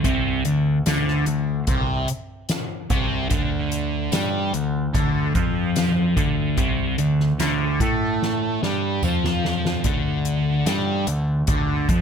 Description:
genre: psychedelic rock.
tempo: 73 BPM.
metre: 4/4.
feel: straight.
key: unclear.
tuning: A4 = 440 Hz.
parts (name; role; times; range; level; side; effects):
fuzz guitar; riff; 0.0-12.0 s; C3 to A3; -22 LUFS; equal; distortion, phaser.
growling picked electric bass; bass; 0.0-12.0 s; C2 to A2; -26 LUFS; equal; overdrive.
soft-mallet drum kit; drums; 0.0-12.0 s; hi-hat, kick drum, snare drum, toms; -25 LUFS; equal; none.
tambourine; percussion; 0.9-10.9 s; none; -37 LUFS; right 20 dB; none.
room: small room ambience.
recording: none.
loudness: -20 LUFS.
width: side -7 dB against mid.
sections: 0.0-12.0 A section.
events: drum fill 8.2-9.8.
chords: 0.0 D5.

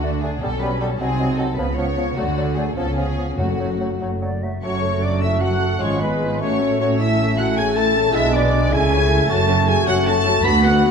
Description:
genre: quick classical-period movement for symphony orchestra.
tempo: 103 BPM (dotted quarters).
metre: 6/8.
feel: rubato.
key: F# minor.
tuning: A4 = 440 Hz.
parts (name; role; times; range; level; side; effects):
dark studio violin section; melody; 0.0-10.9 s; F#5 to B6; -28 LUFS; left 2 dB; none.
bright concert flute; second line; 0.0-10.9 s; Cb5 to B5; -28 LUFS; left 2 dB; none.
mellow clarinet; second line; 0.0-10.9 s; A3 to F#4; -31 LUFS; equal; none.
warm studio violin section; second line; 0.0-10.9 s; F#4 to B5; -29 LUFS; left 3 dB; none.
warm bassoon; accompaniment; 0.0-10.9 s; E#3 to B3; -27 LUFS; right 1 dB; none.
warm studio viola section; accompaniment; 0.0-10.9 s; F3 to C#5; -27 LUFS; right 2 dB; none.
dark French horn section; sustained chords; 0.0-10.9 s; Gb3 to B4; -25 LUFS; left 6 dB; none.
dark studio double bass section; bass; 0.0-10.9 s; F#1 to D2; -24 LUFS; right 3 dB; none.
warm studio cello section; bass; 0.0-10.9 s; D2 to D3; -24 LUFS; right 1 dB; none.
timpani; percussion; 3.4-4.0 s; F#2; -29 LUFS; left 2 dB; none.
bright trumpet section; stabs; 4.6-10.9 s; Cb5 to B5; -26 LUFS; right 2 dB; none.
room: wet recital hall reverb, RT60 1.5 s.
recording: dark, warm production.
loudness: -17 LUFS.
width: side -6 dB against mid.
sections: 0.0-4.6 A section; 4.6-10.9 B section.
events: none.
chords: 0.4 G/B; 1.0 Cdim; 1.6 C#7; 2.2 D; 2.8 C#7; 3.4 F#m; 5.8 Fdim/Ab; 6.4 F#m/A; 7.0 A; 8.1 G#dim/B; 8.7 A/C#; 9.3 F#m.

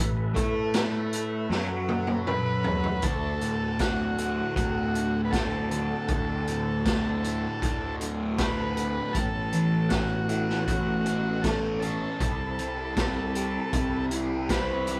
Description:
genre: psychedelic rock.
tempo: 79 BPM.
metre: 4/4.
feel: straight.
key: D major from 3.0 s.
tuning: A4 = 440 Hz.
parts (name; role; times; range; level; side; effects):
tonewheel organ; sustained chords; 0.0-15.0 s; B3 to B5; -41 LUFS; equal; none.
fuzz guitar; riff; 0.0-15.0 s; D2 to C5; -32 LUFS; equal; distortion, phaser.
fuzz picked electric bass; bass; 0.0-15.0 s; A1 to A2; -34 LUFS; equal; overdrive.
raw garage drum kit; drums; 0.4-15.0 s; hi-hat, kick drum, snare drum, toms; -32 LUFS; equal; none.
combo organ; melody; 2.3-15.0 s; F#4 to B4; -34 LUFS; equal; none.
room: moderate studio reverb, RT60 0.7 s.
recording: band playing live in one room.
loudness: -27 LUFS.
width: mono.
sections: 0.0-3.0 A section; 3.0-15.0 B section.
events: drum fill 1.5-3.0.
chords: 0.0 Asus2; 3.0 D; 9.1 Aadd9; 12.2 Cmaj7.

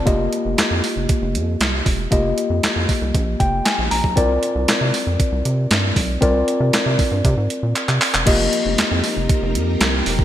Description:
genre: early-eighties boogie funk.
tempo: 117 BPM.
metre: 4/4.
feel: straight.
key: unclear.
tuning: A4 = 440 Hz.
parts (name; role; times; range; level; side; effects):
tine electric piano; accompaniment; 0.0-10.2 s; Bb3 to Bb5; -21 LUFS; left 2 dB; none.
rubbery square bass; bass; 0.0-10.2 s; E1 to C3; -21 LUFS; right 1 dB; none.
crisp 8-bit digital drum machine; drums; 0.1-10.2 s; crash cymbal, handclaps, hi-hat, kick drum, snare drum; -19 LUFS; right 1 dB; overdrive, gated reverb.
string machine, violins; sustained chords; 8.3-10.2 s; F3 to Bb4; -26 LUFS; right 1 dB; ensemble chorus.
room: light reverb.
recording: bright 1980s-style digital production.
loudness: -16 LUFS.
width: side -12 dB against mid.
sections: 0.0-8.3 A section; 8.3-10.2 B section.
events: tine electric piano fill 3.1-4.2; drum fill 7.8-8.3.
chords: 0.1 F9sus4; 4.2 C9sus4; 8.3 F9sus4.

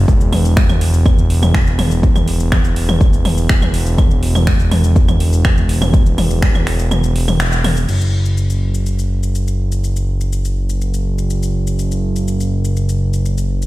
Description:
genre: melodic techno.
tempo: 123 BPM.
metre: 4/4.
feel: straight.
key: unclear.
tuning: A4 = 443 Hz.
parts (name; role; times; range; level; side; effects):
fat analog bass; bass; 0.0-13.7 s; E1 to F#1; -15 LUFS; equal; tube saturation, sidechain pumping.
electronic kick drum; drums; 0.1-6.5 s; none; -12 LUFS; equal; none.
house drum kit; drums; 0.1-13.7 s; claves, crash cymbal, finger snaps, hi-hat, shaker, toms; -21 LUFS; equal; none.
room: digital ambience.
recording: played on a big sound system in a bare room, stone room reverb.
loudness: -13 LUFS.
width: side -17 dB against mid.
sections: 0.0-7.9 A section; 7.9-13.7 B section.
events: kick drops out 6.9-7.9; band accent 7.4.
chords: none.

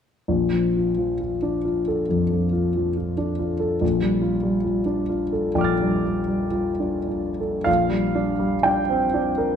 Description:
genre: classical, impressionist solo piano.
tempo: 49-73 BPM.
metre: 4/4.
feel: rubato.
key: Bb major.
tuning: A4 = 439 Hz.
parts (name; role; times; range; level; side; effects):
clear grand piano; solo; 0.3-9.6 s; Bb1 to A6; -20 LUFS; equal; none.
room: moderate recital hall reverb, RT60 1.4 s.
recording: dark, warm production.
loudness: -20 LUFS.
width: side -8 dB against mid.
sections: 0.3-7.7 A section; 7.7-9.6 B section.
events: none.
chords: 0.3 Bbmaj7; 3.8 F69/Bb; 7.7 Bb69.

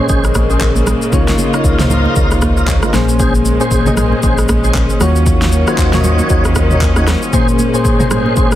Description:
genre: amapiano.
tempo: 116 BPM.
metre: 4/4.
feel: swing 58% on 16ths.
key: Bb minor.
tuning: A4 = 440 Hz.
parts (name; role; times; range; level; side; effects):
soft electric-piano-like synth keys; accompaniment; 0.0-8.6 s; Bb2 to Eb5; -16 LUFS; left 2 dB; chorus.
warm studio string section; sustained chords; 0.0-8.6 s; Db3 to F4; -21 LUFS; equal; none.
tonewheel organ; stabs; 0.0-8.5 s; Db4 to Db5; -21 LUFS; right 1 dB; overdrive, chorus vibrato, slow rotary speaker, digital delay.
warm sub bass; bass; 0.1-7.2 s; Bb1 to Eb2; -15 LUFS; equal; none.
deep house drum kit; drums; 0.1-8.6 s; handclaps, kick drum, rim click, shaker, snare drum, toms; -15 LUFS; equal; none.
congas; percussion; 0.3-8.4 s; none; -24 LUFS; right 6 dB; none.
room: light reverb, digital ambience.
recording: dense, heavily limited modern master.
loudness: -10 LUFS.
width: side -13 dB against mid.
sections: 0.0-8.6 A section.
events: none.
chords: 0.0 Bbm9; 1.1 Db69; 2.9 Bbm9; 5.0 Ebm7; 7.3 Bbm9.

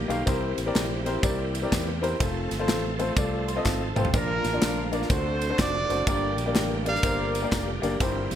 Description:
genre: uptempo gospel.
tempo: 124 BPM.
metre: 4/4.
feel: swing 64% on 8ths.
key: unclear.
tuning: A4 = 439 Hz.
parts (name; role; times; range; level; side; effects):
clear horn section; melody; 0.0-0.1, 4.1-7.8 s; D4 to F5; -29 LUFS; right 3 dB; none.
bright tonewheel organ; sustained chords; 0.0-8.4 s; D3 to A4; -35 LUFS; right 3 dB; slow rotary speaker, overdrive, chorus vibrato.
fingered electric bass; bass; 0.0-8.4 s; F1 to E2; -31 LUFS; equal; none.
clear upright piano; accompaniment; 0.1-8.4 s; G2 to C6; -29 LUFS; left 3 dB; none.
modern studio drum kit; drums; 0.1-8.4 s; crash cymbal, kick drum, ride cymbal, snare drum, toms; -28 LUFS; equal; gated reverb.
tambourine and handclaps; percussion; 0.1-8.4 s; none; -39 LUFS; left 2 dB; none.
room: moderate lush hall reverb, RT60 1.6 s, small room ambience.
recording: bright 1980s-style digital production.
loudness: -23 LUFS.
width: side -10 dB against mid.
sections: 0.0-8.4 A section.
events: upright piano fill 3.2-4.1; drum fill 3.7-4.1.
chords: 0.3 C7; 2.2 F; 4.1 Bb; 5.1 D7; 6.1 Gm.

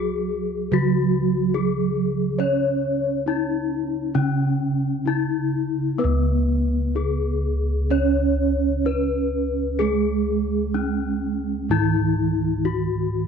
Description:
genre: Javanese gamelan.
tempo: 63-75 BPM.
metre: 4/4.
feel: straight.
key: C# slendro.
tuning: A4 = 440 Hz.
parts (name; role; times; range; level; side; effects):
gamelan-type bronze metallophone; melody; 0.0-13.3 s; B3-25c to C#5; -24 LUFS; left 9 dB; none.
gamelan-type bronze metallophone; accompaniment; 0.0-13.3 s; C#3 to C#4; -25 LUFS; right 12 dB; none.
gamelan-type bossed gongs; bass; 0.0-13.3 s; C#2 to C#5; -25 LUFS; equal; none.
room: moderate echo chamber reverb, RT60 1.9 s, studio ambience.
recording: 1960s-style stereo with parts hard left and right.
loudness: -20 LUFS.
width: side -6 dB against mid.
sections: 0.0-6.0 A section; 6.0-13.3 B section.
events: none.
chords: none.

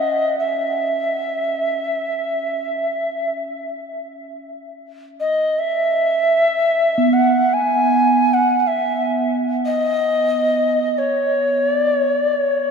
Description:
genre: world meditative, free-time meditation music.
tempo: free time.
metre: none.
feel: none.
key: C# minor.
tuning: A4 = 440 Hz.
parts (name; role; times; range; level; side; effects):
mellow Native American-style cedar flute; melody; 0.0-12.7 s; C#5 to G#5; -17 LUFS; equal; ping-pong delay.
bronze singing bowl; texture; 0.0-12.7 s; B3 to C#4; -23 LUFS; right 3 dB; none.
room: wet cathedral reverb, RT60 5.9 s.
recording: in a vast, echoing space.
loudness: -16 LUFS.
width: side -5 dB against mid.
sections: 0.0-12.7 A section.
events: none.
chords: none.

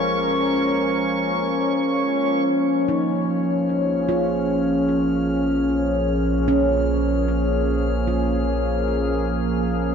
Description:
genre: ambient.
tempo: free time.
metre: none.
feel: none.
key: Bb minor.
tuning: A4 = 440 Hz.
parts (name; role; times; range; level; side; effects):
warm analog pad; sustained chords; 0.0-9.9 s; F3 to Db5; -20 LUFS; equal; chorus.
round analog bass; bass; 0.0-9.9 s; Bb1; -27 LUFS; equal; none.
organ-like drone; drone; 0.0-2.6 s; Bb3 to F4; -36 LUFS; left 1 dB; none.
drifting glass-harmonics texture; texture; 0.0-9.9 s; Db6 to F6; -31 LUFS; right 2 dB; chorus, built-in reverb.
handpan; arpeggios; 2.9-9.8 s; Db4 to F4; -26 LUFS; right 2 dB; ping-pong delay.
room: wet cathedral reverb, RT60 6.4 s.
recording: in a vast, echoing space.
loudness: -19 LUFS.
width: side -7 dB against mid.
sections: 0.0-2.5 A section; 2.5-9.9 B section.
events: fade-in on synth texture 2.5-9.9.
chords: 0.0 Db/Bb; 2.5 Bbm7.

